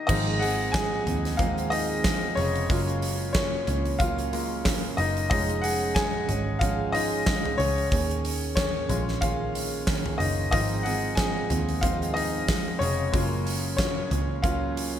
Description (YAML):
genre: piano-driven pop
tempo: 92 BPM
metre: 4/4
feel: swing 56% on 16ths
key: Ab mixolydian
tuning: A4 = 440 Hz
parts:
  - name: bright upright piano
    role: accompaniment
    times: 0.0-15.0 s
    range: Db3 to Ab5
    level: -28 LUFS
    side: left 4 dB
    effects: none
  - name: fingerpicked steel-string acoustic guitar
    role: riff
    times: 0.1-15.0 s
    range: Ab2 to Ab4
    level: -31 LUFS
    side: right 6 dB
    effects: none
  - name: vintage muted picked electric bass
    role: bass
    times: 0.1-15.0 s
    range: F1 to Eb2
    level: -31 LUFS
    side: equal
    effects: none
  - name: huge arena drum kit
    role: drums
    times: 0.1-14.9 s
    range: crash cymbal, hi-hat, kick drum, snare drum, toms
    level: -28 LUFS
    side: equal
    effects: gated reverb
room: light reverb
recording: bright 1980s-style digital production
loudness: -23 LUFS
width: side -10 dB against mid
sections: 0.1-15.0 A section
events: upright piano solo 0.1-15.0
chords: 0.1 Ab6; 2.7 Gbmaj7; 5.3 Db/F; 7.9 Eb7sus4; 10.5 Ab6; 13.1 Gbmaj7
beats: | 0.09 0.74 1.40 2.05 | 2.70 3.35 4.01 4.66 | 5.31 5.96 6.61 7.27 | 7.92 8.57 9.22 9.88 | 10.53 11.18 11.83 12.48 | 13.13 13.79 14.44